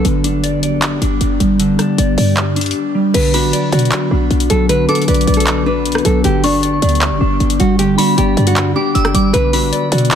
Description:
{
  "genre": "hip hop, trap",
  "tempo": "155 BPM",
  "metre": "4/4",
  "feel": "half-time",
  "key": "B minor",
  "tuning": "A4 = 437 Hz",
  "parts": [
    { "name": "nylon-string guitar", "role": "melody", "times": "0.0, 3.1-10.2 s", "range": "D4 to B4", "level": "-19 LUFS", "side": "equal", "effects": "ping-pong delay" },
    { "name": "mellow electric guitar", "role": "accompaniment", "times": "0.0-10.2 s", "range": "D3 to D5", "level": "-17 LUFS", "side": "left 1 dB", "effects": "warbly pitch drift" },
    { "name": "glassy FM pad", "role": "sustained chords", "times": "0.0-10.2 s", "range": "D3 to G4", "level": "-21 LUFS", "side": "left 1 dB", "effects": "ensemble chorus, built-in reverb" },
    { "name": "short 808-style bass", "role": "bass", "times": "0.0-10.1 s", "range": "F#1 to B2", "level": "-17 LUFS", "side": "right 1 dB", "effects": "none" },
    { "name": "trap drum kit", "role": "drums", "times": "0.0-10.2 s", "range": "crash cymbal, handclaps, hi-hat, rim click", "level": "-20 LUFS", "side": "left 1 dB", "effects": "none" },
    { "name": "soft synth bell", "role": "second line", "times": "3.3-10.2 s", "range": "B5 to E6", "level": "-22 LUFS", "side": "equal", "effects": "chorus, phaser, ping-pong delay" }
  ],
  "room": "digital ambience",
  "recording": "none",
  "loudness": "-12 LUFS",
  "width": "side -8 dB against mid",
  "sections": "0.0-3.1 A section; 3.1-10.2 B section",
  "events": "break 0.0-3.1; drums muted 2.8-3.1",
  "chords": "0.0 G; 3.1 Bm; 6.2 G; 9.3 Bm"
}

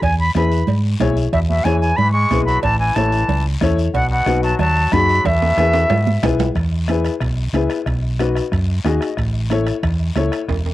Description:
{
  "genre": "latin, cumbia",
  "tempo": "184 BPM",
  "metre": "4/4",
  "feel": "straight",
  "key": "E major",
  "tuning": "A4 = 440 Hz",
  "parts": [
    { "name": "bright concert flute", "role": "melody", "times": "0.0-6.2 s", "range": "E5 to C#6", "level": "-18 LUFS", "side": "equal", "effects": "cassette tape" },
    { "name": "hollow-body short-scale fingered electric bass", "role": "bass", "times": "0.0-10.7 s", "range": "E1 to G#2", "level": "-18 LUFS", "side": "equal", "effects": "none" },
    { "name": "bombo", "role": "percussion", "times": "0.0-10.7 s", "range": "none", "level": "-27 LUFS", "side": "right 1 dB", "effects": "none" },
    { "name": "cowbell and timbales", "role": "percussion", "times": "0.0-10.7 s", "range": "none", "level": "-28 LUFS", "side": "right 8 dB", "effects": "none" },
    { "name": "guiro", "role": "percussion", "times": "0.0-10.7 s", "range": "none", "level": "-37 LUFS", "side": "left 6 dB", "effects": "none" },
    { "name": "warm upright piano", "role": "accompaniment", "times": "0.4-10.4 s", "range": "D#4 to D#5", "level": "-21 LUFS", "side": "left 5 dB", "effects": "none" },
    { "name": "congas", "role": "percussion", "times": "0.4-10.7 s", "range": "none", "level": "-27 LUFS", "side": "right 7 dB", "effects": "none" },
    { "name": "brilliant trombone", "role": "second line", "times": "1.3-6.2 s", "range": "B2 to G#3", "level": "-28 LUFS", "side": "left 5 dB", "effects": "none" }
  ],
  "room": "light reverb",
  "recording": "home recording on cassette",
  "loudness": "-15 LUFS",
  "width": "side -15 dB against mid",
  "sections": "0.0-6.6 A section; 6.6-10.7 B section",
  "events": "drum fill 5.2-6.6, 10.5; upright piano fill 8.7-9.2",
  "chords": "0.0 E; 2.6 A; 3.9 B7; 5.2 E; 7.9 B; 9.2 A"
}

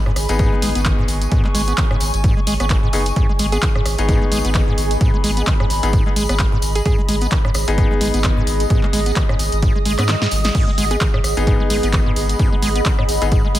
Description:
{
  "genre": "acid house",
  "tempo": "130 BPM",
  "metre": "4/4",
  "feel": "swing 56% on 16ths",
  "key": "G# minor",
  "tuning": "A4 = 440 Hz",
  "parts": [
    { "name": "granular cloud pad", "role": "texture", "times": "0.0-13.6 s", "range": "G#4 to D#6", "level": "-24 LUFS", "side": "right 2 dB", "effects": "built-in reverb, sidechain pumping" },
    { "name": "acid bass, square", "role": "riff", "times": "0.1-13.6 s", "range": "G#2 to B3", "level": "-24 LUFS", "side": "equal", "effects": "overdrive, ping-pong delay" },
    { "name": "punchy analog drum machine", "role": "drums", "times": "0.1-13.6 s", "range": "crash cymbal, handclaps, hi-hat, rim click, snare drum", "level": "-24 LUFS", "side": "equal", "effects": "none" },
    { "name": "round analog bass", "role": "bass", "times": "0.2-13.6 s", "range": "F#1 to G#2", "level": "-20 LUFS", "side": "equal", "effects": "sidechain pumping" },
    { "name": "tambourine", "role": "percussion", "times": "0.2-13.6 s", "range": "none", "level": "-30 LUFS", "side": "left 3 dB", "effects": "none" },
    { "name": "bright concert grand piano", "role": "stabs", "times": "0.3-13.3 s", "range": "B3 to G#4", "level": "-25 LUFS", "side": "left 4 dB", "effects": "ping-pong delay" },
    { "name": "electronic kick drum", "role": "drums", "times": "0.4-13.4 s", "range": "none", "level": "-17 LUFS", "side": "equal", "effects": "none" },
    { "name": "hollow square pluck", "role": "melody", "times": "3.5-6.9, 10.9-11.5 s", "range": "G#4", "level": "-28 LUFS", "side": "right 3 dB", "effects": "chorus, tape echo" }
  ],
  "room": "little or no reverb",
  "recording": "none",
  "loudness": "-15 LUFS",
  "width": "side -14 dB against mid",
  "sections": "0.0-13.6 A section",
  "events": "kick drops out 10.1-10.5; drum fill 10.1-10.5",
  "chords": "0.0 G#m"
}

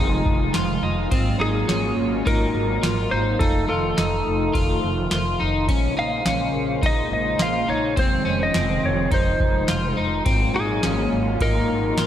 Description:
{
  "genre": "dream pop",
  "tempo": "105 BPM",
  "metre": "4/4",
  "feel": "straight",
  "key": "unclear",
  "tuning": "A4 = 440 Hz",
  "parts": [
    { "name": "clean lap steel guitar", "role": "melody", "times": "0.0-12.1 s", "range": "Ab4 to F5", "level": "-26 LUFS", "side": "equal", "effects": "analog delay" },
    { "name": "lush unison pad", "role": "sustained chords", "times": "0.0-12.1 s", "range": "Bb2 to C5", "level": "-26 LUFS", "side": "right 1 dB", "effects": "chorus, phaser" },
    { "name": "electric guitar at the edge of break-up", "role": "arpeggios", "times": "0.0-12.1 s", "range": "C4 to F4", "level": "-25 LUFS", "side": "left 3 dB", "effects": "analog chorus, analog delay, slapback echo" },
    { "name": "upright bass", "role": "bass", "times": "0.0-12.1 s", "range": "F1 to Bb1", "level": "-26 LUFS", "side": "equal", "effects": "none" },
    { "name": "booming analog drum machine", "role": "drums", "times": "0.3-12.1 s", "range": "kick drum, ride cymbal, snare drum, tambourine", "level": "-23 LUFS", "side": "equal", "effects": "none" }
  ],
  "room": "moderate lush hall reverb, RT60 2.1 s",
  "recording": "big arena sound",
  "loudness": "-19 LUFS",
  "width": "side -10 dB against mid",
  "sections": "0.0-12.1 A section",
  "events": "none",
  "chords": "0.0 Fm7; 1.1 Ab7sus2; 3.4 F7; 5.7 Bbm9; 8.0 Fm7; 10.3 Ab13"
}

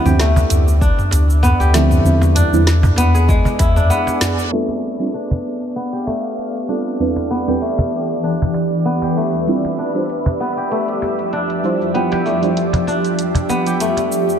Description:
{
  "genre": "organic downtempo",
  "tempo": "97 BPM",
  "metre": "4/4",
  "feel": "swing 55% on 16ths",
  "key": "unclear",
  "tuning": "A4 = 440 Hz",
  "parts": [
    { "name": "deep mellow chord stab", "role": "accompaniment", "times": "0.0-12.5 s", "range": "E2 to G5", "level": "-21 LUFS", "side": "right 3 dB", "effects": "chorus, phaser, cassette tape, sidechain pumping, tape echo" },
    { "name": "granular cloud pad", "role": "sustained chords", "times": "0.0-14.4 s", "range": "E3 to F5", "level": "-22 LUFS", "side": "right 1 dB", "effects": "built-in reverb, sidechain pumping" },
    { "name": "kora", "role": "arpeggios", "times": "0.0-14.4 s", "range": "G#3 to G#4", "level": "-21 LUFS", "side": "left 2 dB", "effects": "low-pass filter, tape echo" },
    { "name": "quartz singing bowl", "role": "texture", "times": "0.0-14.4 s", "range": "B3 to B5", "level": "-32 LUFS", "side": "equal", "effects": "none" },
    { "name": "warm sub bass", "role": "bass", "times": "0.1-3.9 s", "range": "D2 to E2", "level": "-14 LUFS", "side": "equal", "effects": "sidechain pumping" },
    { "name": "afro-pop drum kit", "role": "drums", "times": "0.1-14.4 s", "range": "hi-hat, shaker, snare drum, toms", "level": "-21 LUFS", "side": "equal", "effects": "overdrive" },
    { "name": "cajon", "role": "percussion", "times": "0.4-14.1 s", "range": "none", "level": "-20 LUFS", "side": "right 1 dB", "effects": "none" },
    { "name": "electronic kick drum", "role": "drums", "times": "0.8-3.7 s", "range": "none", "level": "-16 LUFS", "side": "equal", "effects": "overdrive" }
  ],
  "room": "light reverb",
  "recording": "low-pass filter",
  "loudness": "-14 LUFS",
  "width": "side -8 dB against mid",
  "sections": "0.0-4.5 A section; 4.5-14.4 B section",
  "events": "break 3.9-4.5; band accent 4.2-4.5; filter sweep on kora 4.5-14.4; filter sweep 4.5-14.4",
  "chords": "0.0 Dm9; 2.1 E7b9b13; 4.5 F69; 7.0 Cmaj9/E; 9.5 Dm11"
}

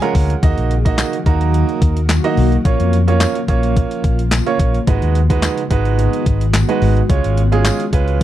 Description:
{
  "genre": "dance-pop",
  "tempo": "108 BPM",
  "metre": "4/4",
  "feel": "straight",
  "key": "G# dorian",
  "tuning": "A4 = 439 Hz",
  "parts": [
    { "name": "clear baby grand piano", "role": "accompaniment", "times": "0.0-8.2 s", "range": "G#3 to F#5", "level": "-19 LUFS", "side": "right 7 dB", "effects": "sidechain pumping" },
    { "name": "ethereal airy pad", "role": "sustained chords", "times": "0.0-8.2 s", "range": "C#3 to G#4", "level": "-24 LUFS", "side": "left 4 dB", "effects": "ensemble chorus, built-in reverb, sidechain pumping" },
    { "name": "crisp 8-bit digital drum machine", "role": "drums", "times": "0.0-8.2 s", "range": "handclaps, hi-hat, kick drum, snare drum", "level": "-17 LUFS", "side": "left 1 dB", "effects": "overdrive" },
    { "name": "vintage muted fingered electric bass", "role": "bass", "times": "0.1-8.2 s", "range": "G#1 to E#2", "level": "-16 LUFS", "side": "left 1 dB", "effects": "sidechain pumping" },
    { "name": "tambourine", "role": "percussion", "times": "1.0-7.8 s", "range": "none", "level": "-32 LUFS", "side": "left 24 dB", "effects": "none" }
  ],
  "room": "little or no reverb",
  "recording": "dry, close 1970s-style studio recording",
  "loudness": "-13 LUFS",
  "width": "side -12 dB against mid",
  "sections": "0.0-8.2 A section",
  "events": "grand piano fill 0.0-0.4",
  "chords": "0.4 D#m; 2.7 A#m; 4.9 G#m7; 7.1 C#"
}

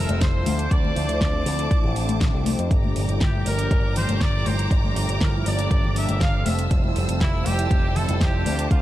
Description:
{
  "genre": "nu-disco, nu disco",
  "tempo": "120 BPM",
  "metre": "4/4",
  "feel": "straight",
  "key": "G dorian",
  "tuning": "A4 = 439 Hz",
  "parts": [
    { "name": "clear trumpet section", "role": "melody", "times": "0.0-8.8 s", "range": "E4 to F5", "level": "-30 LUFS", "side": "equal", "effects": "dub echo" },
    { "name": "warm analog pad", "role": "accompaniment", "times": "0.0-8.8 s", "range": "Bb2 to E5", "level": "-29 LUFS", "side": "right 1 dB", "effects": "chorus, sidechain pumping, tape echo" },
    { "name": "clear studio violin section", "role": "sustained chords", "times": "0.0-8.8 s", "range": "C5 to E6", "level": "-33 LUFS", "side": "equal", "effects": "sidechain pumping" },
    { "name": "picked electric bass with an envelope filter", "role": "bass", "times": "0.0-8.8 s", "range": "F1 to F2", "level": "-24 LUFS", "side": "equal", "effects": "none" },
    { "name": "pop drum kit", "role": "drums", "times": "0.1-8.8 s", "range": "hi-hat, snare drum", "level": "-30 LUFS", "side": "equal", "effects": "none" },
    { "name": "congas", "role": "percussion", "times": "0.1-8.6 s", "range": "none", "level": "-30 LUFS", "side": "left 4 dB", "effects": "none" },
    { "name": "electronic kick drum", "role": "drums", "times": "0.2-8.8 s", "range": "none", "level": "-22 LUFS", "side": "equal", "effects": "none" }
  ],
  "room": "small room ambience",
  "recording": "echo-heavy mix",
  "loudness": "-19 LUFS",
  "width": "side -14 dB against mid",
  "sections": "0.0-8.8 A section",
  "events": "none",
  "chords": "0.5 Dm7; 2.7 Gm7; 6.5 Fmaj7"
}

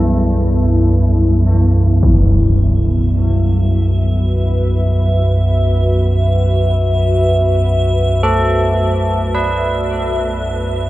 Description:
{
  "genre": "dark ambient drone",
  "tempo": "free time",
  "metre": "none",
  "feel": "none",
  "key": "B minor",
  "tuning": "A4 = 440 Hz",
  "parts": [
    { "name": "dark analog pad", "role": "sustained chords", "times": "0.0-10.9 s", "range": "B3 to E5", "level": "-21 LUFS", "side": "left 1 dB", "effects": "chorus" },
    { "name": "carillon bells", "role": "arpeggios", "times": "0.0-10.9 s", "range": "E3 to B4", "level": "-22 LUFS", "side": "right 1 dB", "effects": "diffuse ambient delay" },
    { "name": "deep rumbling drone", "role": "drone", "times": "0.0-10.9 s", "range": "B1 to F#2", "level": "-14 LUFS", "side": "equal", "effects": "built-in reverb, wide subtle chorus" },
    { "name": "impact", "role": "percussion", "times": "2.0-2.3 s", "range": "none", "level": "-19 LUFS", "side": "equal", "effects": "low-pass filter on sfx" },
    { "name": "icy glass pad", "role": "texture", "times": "3.3-10.9 s", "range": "E5", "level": "-22 LUFS", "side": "equal", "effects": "chorus, built-in reverb" }
  ],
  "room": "wet huge ambient reverb, RT60 7.5 s",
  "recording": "worn, warbling old tape, cassette tape, warbly pitch drift",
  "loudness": "-12 LUFS",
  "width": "side -16 dB against mid",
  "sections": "0.0-10.9 A section",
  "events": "fade-out 8.0-10.9",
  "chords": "0.0 B7sus4"
}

